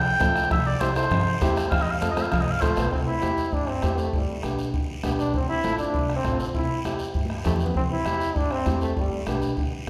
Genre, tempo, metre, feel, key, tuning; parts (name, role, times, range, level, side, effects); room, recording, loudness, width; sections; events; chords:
latin, cumbia; 198 BPM; 4/4; straight; C major; A4 = 440 Hz
warm oboe; melody; 0.0-2.9 s; C5 to G5; -28 LUFS; equal
upright bass; bass; 0.0-9.9 s; F1 to A2; -32 LUFS; equal
warm upright piano; accompaniment; 0.2-9.9 s; B3 to A4; -33 LUFS; equal
bombo; percussion; 0.2-9.9 s; -30 LUFS; equal
congas; percussion; 0.2-9.7 s; -34 LUFS; equal
guiro; percussion; 0.2-9.9 s; -43 LUFS; equal
clear trombone; second line; 2.6-9.3 s; G3 to E4; -30 LUFS; equal
wet recital hall reverb, RT60 1.5 s; recorded in a church or concert hall; -25 LUFS; mono
0.0-2.9 A section; 2.9-9.9 B section
oboe solo 0.0-2.9; trombone solo 2.9-9.9; drum fill 7.2-7.8
0.0 F; 0.5 C; 1.7 F; 2.9 C; 4.1 G; 5.3 F; 6.5 C; 9.0 G